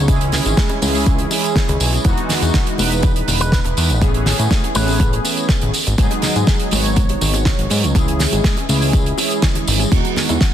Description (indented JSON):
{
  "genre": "nu-disco, nu disco",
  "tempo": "122 BPM",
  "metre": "4/4",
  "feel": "straight",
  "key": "unclear",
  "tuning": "A4 = 439 Hz",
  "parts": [
    { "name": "mellow synth brass", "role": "accompaniment", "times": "0.0-10.5 s", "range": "E3 to C#5", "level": "-21 LUFS", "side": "right 1 dB", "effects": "chorus, sidechain pumping, tape echo" },
    { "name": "fat analog bass", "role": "bass", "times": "0.0-10.4 s", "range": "E1 to A2", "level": "-18 LUFS", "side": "equal", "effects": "tube saturation" },
    { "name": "damped 70s drum kit", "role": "drums", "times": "0.1-10.5 s", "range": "crash cymbal, hi-hat, snare drum, tambourine", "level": "-20 LUFS", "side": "right 2 dB", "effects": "studio reverb" },
    { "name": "electronic kick drum", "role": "drums", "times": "0.1-10.5 s", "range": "none", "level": "-17 LUFS", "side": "equal", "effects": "studio reverb" },
    { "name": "bongos and congas", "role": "percussion", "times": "0.1-10.4 s", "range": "none", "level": "-28 LUFS", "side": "left 4 dB", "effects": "none" },
    { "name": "electric guitar with an envelope filter", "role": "melody", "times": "3.4-5.1 s", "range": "B4", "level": "-27 LUFS", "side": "equal", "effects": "digital delay" }
  ],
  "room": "small room reverb",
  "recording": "dense, heavily limited modern master",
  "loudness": "-14 LUFS",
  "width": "side -10 dB against mid",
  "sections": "0.0-10.5 A section",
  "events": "none",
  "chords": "0.1 C#m; 2.0 Emaj7; 4.0 Amaj7; 5.7 G#m7; 8.0 C#m; 9.9 Emaj7"
}